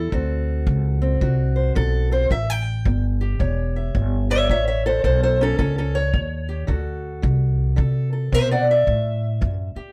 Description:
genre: acoustic country blues, solo or duo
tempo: 110 BPM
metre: 4/4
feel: swing 63% on 8ths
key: unclear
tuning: A4 = 441 Hz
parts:
  - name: fingerpicked steel-string acoustic guitar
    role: melody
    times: 0.0-9.9 s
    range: A2 to G5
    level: -25 LUFS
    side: equal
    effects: slapback echo
  - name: upright bass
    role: bass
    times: 0.0-9.8 s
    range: E1 to C3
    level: -24 LUFS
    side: equal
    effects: none
  - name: kick drum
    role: drums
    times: 0.1-9.6 s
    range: none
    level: -26 LUFS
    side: equal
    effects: none
room: little or no reverb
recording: dry, close 1970s-style studio recording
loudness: -21 LUFS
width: mono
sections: 0.0-9.9 A section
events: steel-string acoustic guitar solo 0.0-9.9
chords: 0.1 D7; 2.3 A7; 6.7 D7; 8.9 A5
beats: | 0.12 0.66 1.21 1.76 | 2.31 2.85 3.40 3.95 | 4.50 5.04 5.59 6.14 | 6.68 7.23 7.78 8.32 | 8.87 9.42

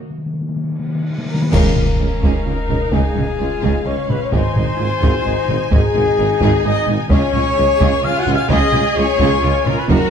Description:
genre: cinematic, epic orchestral film score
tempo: 129 BPM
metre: 3/4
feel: straight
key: unclear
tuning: A4 = 438 Hz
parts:
  - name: mellow French horn section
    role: sustained chords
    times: 0.0-10.1 s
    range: F#4 to E#5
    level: -21 LUFS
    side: left 6 dB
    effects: none
  - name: timpani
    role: percussion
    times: 0.0-1.5 s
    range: D#3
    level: -21 LUFS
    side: left 2 dB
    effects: none
  - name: cymbal swell and impact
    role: sound effects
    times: 0.9-2.9 s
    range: none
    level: -30 LUFS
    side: equal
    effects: none
  - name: bright silver concert flute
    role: second line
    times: 1.3-10.1 s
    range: G#5 to F#6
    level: -27 LUFS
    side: left 2 dB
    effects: none
  - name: mellow trumpet section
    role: stabs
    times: 1.3-10.1 s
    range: G#4 to F#5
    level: -25 LUFS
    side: equal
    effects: none
  - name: rich symphonic violin section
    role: melody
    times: 1.5-10.1 s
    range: E#5 to G#5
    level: -29 LUFS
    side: left 5 dB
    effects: none
  - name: warm symphonic violin section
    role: second line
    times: 1.5-10.1 s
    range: D#4 to D#5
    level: -29 LUFS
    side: left 4 dB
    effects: none
  - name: clear symphonic cello section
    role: bass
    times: 1.5-10.0 s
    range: C#2 to G#2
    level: -22 LUFS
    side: right 3 dB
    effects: none
  - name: clear symphonic double bass section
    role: bass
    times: 1.5-10.0 s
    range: F#1 to C#2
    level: -22 LUFS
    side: right 4 dB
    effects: none
  - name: warm tuba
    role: bass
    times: 1.5-10.0 s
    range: F#1 to C#2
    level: -24 LUFS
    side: right 4 dB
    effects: none
  - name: taiko ensemble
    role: drums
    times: 1.5-10.1 s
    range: none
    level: -20 LUFS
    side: left 1 dB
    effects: none
  - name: clash cymbals and concert bass drum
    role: percussion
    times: 1.5-2.4 s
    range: none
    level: -22 LUFS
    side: equal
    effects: none
  - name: bright symphonic viola section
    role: accompaniment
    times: 2.0-10.1 s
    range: C#4 to G#4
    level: -26 LUFS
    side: right 1 dB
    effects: none
room: moderate scoring stage reverb, RT60 1.8 s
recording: dark, warm production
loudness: -14 LUFS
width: side -7 dB against mid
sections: 0.0-1.5 A section; 1.5-10.1 B section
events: timpani fill 0.0-1.5; drum fill 0.8-1.5; cymbal swell 0.9-1.5; band accent 1.5-2.0; impact 1.5-2.9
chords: 0.0 D#5; 1.5 C#add9; 4.3 G#; 7.1 C#add9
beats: | 0.09 0.57 1.05 | 1.53 2.00 2.46 | 2.92 3.39 3.86 | 4.32 4.79 5.25 | 5.71 6.18 6.64 | 7.11 7.57 8.04 | 8.50 8.96 9.43 | 9.90

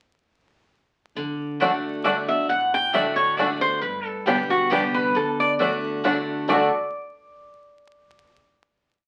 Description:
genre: bluegrass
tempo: 135 BPM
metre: 3/4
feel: straight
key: D major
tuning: A4 = 439 Hz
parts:
  - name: picked steel-string acoustic guitar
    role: accompaniment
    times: 1.2-6.7 s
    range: G2 to G4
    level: -30 LUFS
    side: equal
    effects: none
  - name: upright bass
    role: bass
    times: 1.2-6.7 s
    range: G1 to D2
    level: -53 LUFS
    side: equal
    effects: none
  - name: bluegrass banjo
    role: arpeggios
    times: 1.6-6.7 s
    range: G3 to A4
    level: -28 LUFS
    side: equal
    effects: none
  - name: mandolin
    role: stabs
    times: 1.6-6.7 s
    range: A3 to G5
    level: -28 LUFS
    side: equal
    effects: none
  - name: lap resonator guitar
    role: melody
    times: 2.0-6.7 s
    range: F#4 to G5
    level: -25 LUFS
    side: equal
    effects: none
room: wet studio reverb, RT60 0.5 s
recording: very old 78 rpm record, vinyl crackle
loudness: -23 LUFS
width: mono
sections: 1.2-6.5 A section; 6.5-7.8 final chord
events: none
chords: 1.2 D; 3.8 G; 5.2 D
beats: | 1.16 1.60 2.05 | 2.49 2.94 3.38 | 3.83 4.27 4.72 | 5.16 5.61 6.05 | 6.50

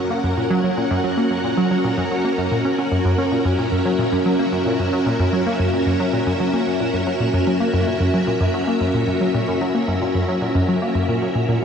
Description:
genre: ambient, sequencer-driven space music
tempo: 112 BPM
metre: 4/4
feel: straight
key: F# mixolydian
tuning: A4 = 437 Hz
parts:
  - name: string machine, full ensemble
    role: sustained chords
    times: 0.0-11.6 s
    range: C#4 to F#5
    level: -20 LUFS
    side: equal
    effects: ensemble chorus
  - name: analog pluck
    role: riff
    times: 0.0-11.6 s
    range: F#2 to C#4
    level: -20 LUFS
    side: equal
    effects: chorus, ping-pong delay
  - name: pulsing gated texture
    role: texture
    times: 0.0-11.6 s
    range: A#4 to A#5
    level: -35 LUFS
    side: right 1 dB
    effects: none
room: wet huge ambient reverb, RT60 7.5 s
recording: dark, warm production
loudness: -17 LUFS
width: side -7 dB against mid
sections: 0.0-11.6 A section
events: none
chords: 0.0 F#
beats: 0.24 0.77 | 1.31 1.85 2.38 2.92 | 3.45 3.99 4.52 5.06 | 5.60 6.13 6.67 7.20 | 7.74 8.27 8.81 9.35 | 9.88 10.42 10.95 11.49

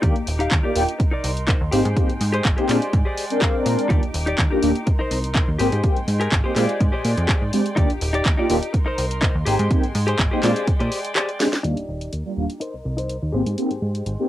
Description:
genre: filtered disco house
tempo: 124 BPM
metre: 4/4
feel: straight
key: Eb major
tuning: A4 = 439 Hz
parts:
  - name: mellow synth brass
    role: accompaniment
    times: 0.0-14.3 s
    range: G3 to Bb4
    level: -22 LUFS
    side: equal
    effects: chorus, phaser, vintage 12-bit sampler grit, sidechain pumping, low-pass filter, cassette tape
  - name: rich chamber violin section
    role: sustained chords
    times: 0.0-14.3 s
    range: Ab3 to D6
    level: -32 LUFS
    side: equal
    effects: sidechain pumping, low-pass filter, cassette tape
  - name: direct-recorded clean electric guitar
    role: riff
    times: 0.0-14.1 s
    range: Eb4 to F5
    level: -26 LUFS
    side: left 2 dB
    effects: wide subtle chorus, sidechain pumping, low-pass filter, cassette tape
  - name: plucky analog bass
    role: bass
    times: 0.0-14.2 s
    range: Eb1 to Bb2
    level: -24 LUFS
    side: equal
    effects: sidechain pumping, low-pass filter
  - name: electronic kick drum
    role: drums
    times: 0.0-10.8 s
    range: none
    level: -20 LUFS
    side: equal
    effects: overdrive, cassette tape
  - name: house drum kit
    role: drums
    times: 0.0-14.2 s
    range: handclaps, hi-hat, snare drum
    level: -26 LUFS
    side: equal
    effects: overdrive, sidechain pumping on hats, cassette tape
room: moderate booth ambience, RT60 0.2 s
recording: home recording on cassette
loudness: -18 LUFS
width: side -14 dB against mid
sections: 0.0-11.6 A section; 11.6-14.3 B section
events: kick drops out 11.2-11.6; drum fill 11.4; filter sweep 11.6-14.3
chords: 0.0 Ebmaj7; 1.0 Cm7; 1.7 Abmaj7; 2.7 Bb13; 3.9 Ebmaj7; 4.9 Cm7; 5.6 Abmaj7; 6.6 Bb13; 7.8 Ebmaj7; 8.7 Cm7; 9.5 Abmaj7; 10.4 Bb13; 11.6 Ebmaj7; 12.6 Cm7; 13.3 Abmaj7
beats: | 0.03 0.51 1.00 1.48 | 1.97 2.45 2.93 3.42 | 3.90 4.38 4.87 5.35 | 5.84 6.32 6.80 7.29 | 7.77 8.26 8.74 9.22 | 9.71 10.19 10.68 11.16 | 11.64 12.13 12.61 13.10 | 13.58 14.06

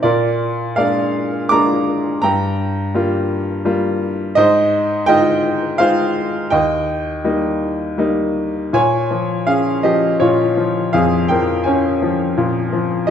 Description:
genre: classical, lyrical solo piano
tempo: 83 BPM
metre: 3/4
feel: rubato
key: Bb dorian from 8.7 s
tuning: A4 = 438 Hz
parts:
  - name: bright upright piano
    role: solo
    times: 0.0-13.1 s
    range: Eb2 to D6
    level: -14 LUFS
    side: equal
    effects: none
room: moderate scoring stage reverb, RT60 1.5 s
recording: minimal, uncompressed stereo recording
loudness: -15 LUFS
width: side -8 dB against mid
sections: 0.0-8.7 A section; 8.7-13.1 B section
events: none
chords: 0.0 Bb7; 2.2 Gm7; 4.4 Fm7/Ab; 6.5 Eb; 8.7 Bbm7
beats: | 0.04 0.77 1.50 | 2.23 2.94 3.66 | 4.38 5.08 5.80 | 6.53 7.25 7.99 | 8.74 9.48 10.21 | 10.94 11.67 12.38 | 13.09

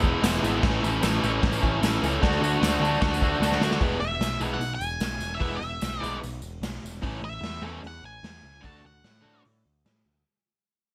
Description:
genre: garage rock duo or trio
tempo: 150 BPM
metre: 4/4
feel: straight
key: E mixolydian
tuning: A4 = 440 Hz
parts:
  - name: raw garage guitar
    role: riff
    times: 0.0-9.4 s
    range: A2 to F#4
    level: -28 LUFS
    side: equal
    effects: overdrive, spring reverb
  - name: growling picked electric bass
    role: bass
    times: 0.0-10.2 s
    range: E1 to A2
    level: -34 LUFS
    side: equal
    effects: overdrive, tube saturation
  - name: raw garage drum kit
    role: drums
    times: 0.0-10.0 s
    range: crash cymbal, hi-hat, kick drum, snare drum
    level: -30 LUFS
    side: equal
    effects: none
  - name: tambourine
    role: percussion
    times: 0.0-6.9 s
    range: none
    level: -44 LUFS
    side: equal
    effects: none
  - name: octave-fuzz lead guitar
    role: melody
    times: 4.0-9.4 s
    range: E5 to A5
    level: -36 LUFS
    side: equal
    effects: distortion
room: moderate small room reverb, RT60 0.5 s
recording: none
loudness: -26 LUFS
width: mono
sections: 0.0-3.8 A section; 3.8-10.3 B section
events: drum fill 3.4-3.8; fade-out 3.8-10.3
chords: 0.0 E; 0.6 A; 2.2 D; 3.8 E; 7.0 A; 8.6 D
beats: 0.23 | 0.63 1.03 1.42 1.82 | 2.21 2.61 3.01 3.41 | 3.81 4.21 4.61 5.01 | 5.41 5.81 6.21 6.62 | 7.02 7.42 7.83 8.23 | 8.64 9.04 9.45 9.86

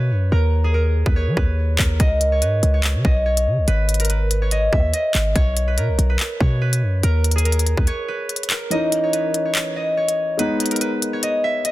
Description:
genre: hip hop, drill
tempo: 143 BPM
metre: 4/4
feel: half-time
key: G# minor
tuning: A4 = 441 Hz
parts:
  - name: concert harp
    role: melody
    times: 0.0-11.7 s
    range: G#4 to E5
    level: -22 LUFS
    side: equal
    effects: ping-pong delay
  - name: hard-hitting 808-style bass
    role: bass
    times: 0.0-7.9 s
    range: G#1 to F#3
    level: -18 LUFS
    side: equal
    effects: none
  - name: drill drum kit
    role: drums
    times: 1.1-11.7 s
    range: handclaps, hi-hat, kick drum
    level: -21 LUFS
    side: equal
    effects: none
  - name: dark grand piano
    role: accompaniment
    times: 8.7-11.7 s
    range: E3 to D#4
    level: -23 LUFS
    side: left 1 dB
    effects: none
room: small room ambience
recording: dense, heavily limited modern master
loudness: -17 LUFS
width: side -16 dB against mid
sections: 0.0-11.7 A section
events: break 0.0-2.0, 7.9-8.7; kick muted 8.7-11.7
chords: 0.3 D#7(no3); 2.0 C#5; 3.7 G#5; 5.4 B5; 7.0 Bmaj13/D#; 8.7 C#madd9; 10.4 G#m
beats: | 0.32 0.74 1.16 1.58 | 2.00 2.42 2.84 3.26 | 3.68 4.10 4.52 4.94 | 5.36 5.78 6.20 6.61 | 7.03 7.45 7.87 8.29 | 8.71 9.13 9.55 9.97 | 10.39 10.81 11.23 11.65

